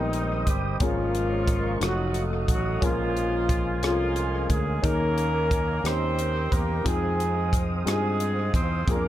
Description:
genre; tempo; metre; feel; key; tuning
slow gospel; 60 BPM (dotted quarters); 6/8; straight; unclear; A4 = 442 Hz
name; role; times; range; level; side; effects
warm horn section; melody; 0.0-9.1 s; Eb3 to C5; -27 LUFS; equal; analog delay
warm baby grand piano; accompaniment; 0.0-9.1 s; Ab2 to C5; -32 LUFS; left 3 dB; analog delay
mellow tonewheel organ; sustained chords; 0.0-9.1 s; A4 to Eb6; -36 LUFS; right 2 dB; slow rotary speaker, chorus vibrato
fingered electric bass; bass; 0.0-9.1 s; F1 to G2; -28 LUFS; equal; none
crisp fusion drum kit; drums; 0.1-9.0 s; hi-hat, kick drum, rim click; -28 LUFS; equal; none
room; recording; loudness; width
light reverb, small room ambience; echo-heavy mix; -23 LUFS; side -13 dB against mid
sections
0.0-9.1 A section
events
none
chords
0.0 Abmaj7; 0.8 Db6/Ab; 1.8 F7b9; 2.8 Bbm7; 4.8 Eb7sus4; 5.8 Eb7; 6.9 Fm7

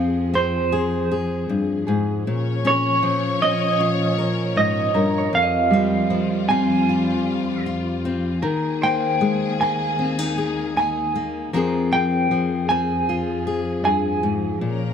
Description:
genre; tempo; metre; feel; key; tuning
acoustic folk-pop ballad; 78 BPM; 4/4; straight; F minor; A4 = 440 Hz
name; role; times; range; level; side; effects
electric guitar through a small old amp; melody; 0.0-14.6 s; C5 to Ab5; -22 LUFS; right 2 dB; tremolo
fingerpicked steel-string acoustic guitar; accompaniment; 0.0-14.9 s; F2 to Bb4; -22 LUFS; left 4 dB; none
warm studio string section; sustained chords; 0.0-14.9 s; Eb2 to Db5; -27 LUFS; equal; none
Celtic harp; arpeggios; 1.9-14.9 s; G3 to Eb5; -26 LUFS; right 3 dB; none
room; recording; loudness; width
light reverb; close, detailed microphones; -19 LUFS; side -8 dB against mid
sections
0.0-14.9 A section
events
none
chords
0.0 Fmadd9; 2.3 Bbm; 5.3 Fmadd9; 8.4 Ebsus4; 11.5 Fmadd9

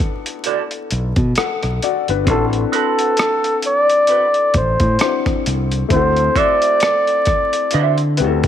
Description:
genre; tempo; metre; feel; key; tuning
R&B, neo-soul; 66 BPM; 4/4; swing 57% on 16ths; A dorian; A4 = 440 Hz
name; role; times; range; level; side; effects
clear upright piano; accompaniment; 0.0-8.5 s; A3 to F#5; -23 LUFS; left 10 dB; none
boom bap sampler-style drum kit; drums; 0.0-8.5 s; hi-hat, kick drum, rim click; -21 LUFS; equal; overdrive
semi-hollow electric guitar; second line; 0.5-8.0 s; C4 to E5; -23 LUFS; right 12 dB; wah
modern bright fingered electric bass; bass; 0.9-8.5 s; G1 to D3; -18 LUFS; equal; transformer saturation
mellow flugelhorn; melody; 2.3-8.2 s; A4 to D5; -16 LUFS; equal; slapback echo
room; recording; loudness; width
light reverb; 1960s-style stereo with parts hard left and right, vinyl crackle; -14 LUFS; side -10 dB against mid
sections
0.0-8.5 A section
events
none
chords
0.0 Bm7; 2.3 Am69; 5.9 D9

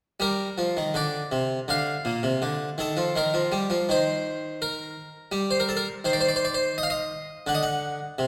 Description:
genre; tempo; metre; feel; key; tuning
classical, baroque-style suite movement for harpsichord; 83 BPM; 4/4; rubato; G minor; A4 = 440 Hz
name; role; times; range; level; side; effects
harpsichord; solo; 0.2-8.3 s; Bb2 to F#5; -26 LUFS; equal; none
room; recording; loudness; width
wet scoring stage reverb, RT60 1.6 s; none; -26 LUFS; mono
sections
0.2-8.3 A section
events
none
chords
0.2 Gm; 1.7 Dm; 3.1 Eb; 6.0 N.C.; 7.5 D7

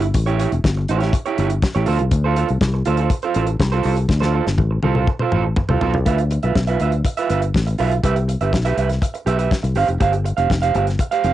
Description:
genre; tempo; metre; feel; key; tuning
disco; 122 BPM; 4/4; straight; D dorian; A4 = 440 Hz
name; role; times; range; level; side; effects
electric guitar through a small old amp; accompaniment; 0.0-11.3 s; E4 to F5; -21 LUFS; right 7 dB; none
fingered electric bass; bass; 0.0-11.3 s; E1 to D2; -19 LUFS; left 2 dB; none
damped 70s drum kit; drums; 0.0-11.3 s; hi-hat, kick drum, snare drum, toms; -21 LUFS; left 1 dB; cassette tape
room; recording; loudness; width
light reverb; home recording on cassette, nothing above 10.3 kHz; -16 LUFS; side -13 dB against mid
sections
0.0-6.1 A section; 6.1-11.3 B section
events
drum fill 4.1-6.1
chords
0.0 A7; 1.9 Dm7; 6.1 Dm69; 8.0 Cmaj7; 9.8 G7sus4

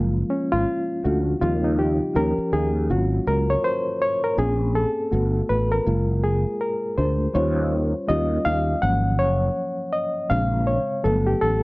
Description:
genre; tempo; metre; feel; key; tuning
R&B, neo-soul; 81 BPM; 4/4; swing 60% on 16ths; unclear; A4 = 436 Hz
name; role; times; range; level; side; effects
bright reed electric piano; accompaniment; 0.0-11.6 s; Db3 to Gb5; -22 LUFS; left 1 dB; fast tremolo
sustaining fretless electric bass; bass; 0.0-11.6 s; Gb1 to Eb2; -22 LUFS; equal; ensemble chorus
room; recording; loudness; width
light reverb; worn, warbling old tape, cassette tape, warbly pitch drift; -20 LUFS; side -23 dB against mid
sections
0.0-11.6 A section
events
reed electric piano solo 0.0-11.6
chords
0.0 Gbmaj9; 1.4 Eb13; 2.1 Eb7; 2.9 Ab13sus4; 4.4 Bbm9; 5.1 Gmaj9; 5.8 Gbmaj9; 7.3 Eb13; 8.1 Eb7; 8.8 Ab13sus4; 10.3 Bbm9; 11.0 Gmaj9

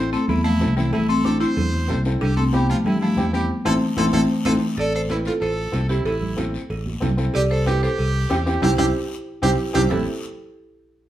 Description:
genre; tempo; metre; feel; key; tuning
latin, cumbia; 187 BPM; 4/4; straight; A minor; A4 = 440 Hz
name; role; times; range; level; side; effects
buzzing marimba with medium hard mallets; melody; 0.0-10.1 s; E3 to D5; -22 LUFS; equal; none
brilliant trumpet; second line; 0.0-10.1 s; E4 to C5; -30 LUFS; right 2 dB; none
warm upright piano; accompaniment; 0.0-10.1 s; C4 to A4; -26 LUFS; left 1 dB; none
fingered electric bass; bass; 0.0-10.1 s; A1 to G2; -24 LUFS; equal; none
guiro; percussion; 0.1-10.0 s; none; -40 LUFS; left 4 dB; none
congas; percussion; 0.3-10.0 s; none; -30 LUFS; right 3 dB; none
cowbell and timbales; percussion; 0.3-10.0 s; none; -33 LUFS; right 2 dB; none
room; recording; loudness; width
moderate large studio reverb, RT60 0.9 s; band playing live in one room, faint mains hum; -18 LUFS; side -13 dB against mid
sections
0.0-4.8 A section; 4.8-9.9 B section; 9.9-11.1 C section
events
band accent 3.5-4.8, 8.6-9.9; drum fill 4.0-4.8, 9.4-9.9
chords
0.0 Am; 2.2 C; 3.5 Am; 7.3 C; 9.9 Am

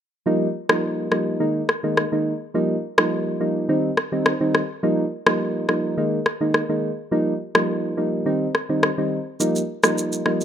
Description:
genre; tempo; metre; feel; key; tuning
afrobeats; 105 BPM; 4/4; straight; Eb major; A4 = 440 Hz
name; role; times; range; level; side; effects
soft electric-piano-like synth keys; accompaniment; 0.3-10.4 s; Eb3 to Eb4; -21 LUFS; right 1 dB; chorus
electronic rim click and shaker; drums; 0.7-10.4 s; none; -20 LUFS; left 1 dB; none
room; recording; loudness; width
light reverb; rough home demo mix; -19 LUFS; side -9 dB against mid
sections
0.3-10.4 A section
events
hi-hats muted 0.3-9.4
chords
0.3 Ebadd9; 1.4 Absus2; 2.5 Ebadd9; 3.7 Cm; 4.8 Ebadd9; 6.0 Absus2; 7.1 Ebadd9; 8.3 Cm; 9.4 Ebadd9

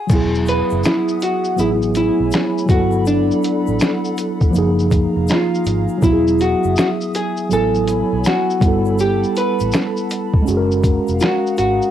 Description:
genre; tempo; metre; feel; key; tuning
lo-fi hip hop; 81 BPM; 4/4; swing 65% on 16ths; E major; A4 = 440 Hz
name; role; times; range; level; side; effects
vintage hollow-body jazz guitar; melody; 0.0-11.9 s; D4 to B4; -19 LUFS; equal; none
mellow tine electric piano; accompaniment; 0.1-11.9 s; E#3 to G#5; -19 LUFS; equal; medium stereo tremolo
warbly tape-like pad; sustained chords; 0.4-11.9 s; A3 to D#6; -30 LUFS; equal; chorus, built-in reverb
vintage muted fingered electric bass; bass; 0.1-11.8 s; E1 to B1; -21 LUFS; equal; transformer saturation
lo-fi sampler-style drum kit; drums; 0.1-11.9 s; crash cymbal, finger snaps, hi-hat, kick drum, shaker, snare drum; -18 LUFS; equal; overdrive
egg shaker; percussion; 0.1-11.8 s; none; -44 LUFS; left 14 dB; none
room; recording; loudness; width
light reverb; home recording on cassette; -14 LUFS; side -10 dB against mid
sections
0.1-11.9 A section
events
none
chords
0.1 Emaj9; 1.6 Amaj9; 2.7 Gmaj9; 4.5 F#maj9; 6.0 Emaj9; 7.5 Amaj9; 8.6 Gmaj9; 10.5 F#maj9

